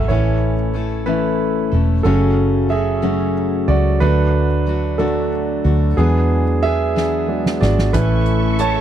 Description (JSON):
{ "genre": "six-eight pop ballad", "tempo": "61 BPM (dotted quarters)", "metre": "6/8", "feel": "straight", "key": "unclear", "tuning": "A4 = 440 Hz", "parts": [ { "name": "warm concert grand piano", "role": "accompaniment", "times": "0.0-8.8 s", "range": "C#3 to A5", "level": "-19 LUFS", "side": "right 4 dB", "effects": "none" }, { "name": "warm symphonic string section", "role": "sustained chords", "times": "0.0-0.1, 7.9-8.8 s", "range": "A4 to C#6", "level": "-28 LUFS", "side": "equal", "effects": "none" }, { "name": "picked steel-string acoustic guitar", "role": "arpeggios", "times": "0.0-8.8 s", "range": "F#2 to A4", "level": "-22 LUFS", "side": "left 14 dB", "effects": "none" }, { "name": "vintage muted fingered electric bass", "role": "bass", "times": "0.0-8.8 s", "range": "E1 to E2", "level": "-18 LUFS", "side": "equal", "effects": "none" }, { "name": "soft-mallet drum kit", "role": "drums", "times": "7.0-8.7 s", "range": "hi-hat, kick drum, snare drum", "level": "-22 LUFS", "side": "right 1 dB", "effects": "none" } ], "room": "little or no reverb", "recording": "dry, close 1970s-style studio recording", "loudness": "-15 LUFS", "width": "side -10 dB against mid", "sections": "0.1-8.8 A section", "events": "grand piano solo 0.1-8.8; drum fill 7.0-7.9", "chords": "0.1 A; 2.1 F#m; 4.0 D; 6.0 E7; 7.9 A" }